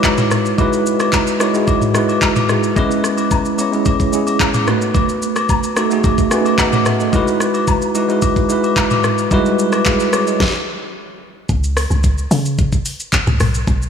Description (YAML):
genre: amapiano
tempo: 110 BPM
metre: 4/4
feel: straight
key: unclear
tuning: A4 = 440 Hz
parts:
  - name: bell-like tine electric piano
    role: accompaniment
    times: 0.0-10.5 s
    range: G3 to G#5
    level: -16 LUFS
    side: right 1 dB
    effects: medium stereo tremolo
  - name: smooth R&B drum kit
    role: drums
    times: 0.0-13.9 s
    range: handclaps, hi-hat, kick drum, rim click, shaker, snare drum, toms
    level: -18 LUFS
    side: equal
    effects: none
  - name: woodblock and agogo bells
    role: percussion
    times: 0.0-10.3 s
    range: none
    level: -22 LUFS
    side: left 7 dB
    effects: none
  - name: deep log drum bass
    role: bass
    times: 11.5-13.9 s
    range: B1 to C#3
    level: -16 LUFS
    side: equal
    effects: none
room: moderate lush hall reverb, RT60 2.6 s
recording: dreamy mix soaked in reverb, small room ambience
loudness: -13 LUFS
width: side -7 dB against mid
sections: 0.0-11.5 A section; 11.5-13.9 B section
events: tine electric piano fill 6.0-7.1; stop 10.4-11.5; drop 11.5-13.9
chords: 0.0 Emaj9; 2.8 C#m7; 4.7 B7; 7.1 Emaj9; 11.5 N.C.